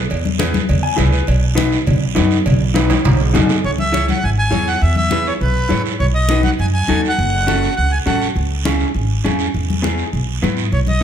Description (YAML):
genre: latin, cumbia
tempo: 203 BPM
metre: 4/4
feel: straight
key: E major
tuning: A4 = 445 Hz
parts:
  - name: electric guitar through a small old amp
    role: accompaniment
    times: 0.0-11.0 s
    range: B3 to G#5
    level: -21 LUFS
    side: left 1 dB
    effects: none
  - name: upright bass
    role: bass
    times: 0.0-11.0 s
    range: F#1 to G#2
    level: -17 LUFS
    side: equal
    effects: none
  - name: congas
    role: percussion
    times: 0.1-11.0 s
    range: none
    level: -22 LUFS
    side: left 3 dB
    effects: none
  - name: cowbell and timbales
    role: percussion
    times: 0.1-3.6 s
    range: none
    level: -25 LUFS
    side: right 6 dB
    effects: none
  - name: guiro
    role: percussion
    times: 0.1-11.0 s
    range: none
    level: -28 LUFS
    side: right 9 dB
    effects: none
  - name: accordion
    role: melody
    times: 3.6-8.3, 10.7-11.0 s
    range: B4 to G#5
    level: -20 LUFS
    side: equal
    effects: none
room: moderate recital hall reverb, RT60 1.4 s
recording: none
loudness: -14 LUFS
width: side -9 dB against mid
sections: 0.0-3.6 A section; 3.6-11.0 B section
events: clean electric guitar fill 0.7-1.3; drum fill 2.8-3.6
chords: 0.0 E; 1.3 B; 3.6 C#m; 4.8 E; 6.0 B; 7.2 F#m; 8.4 C#m; 9.5 E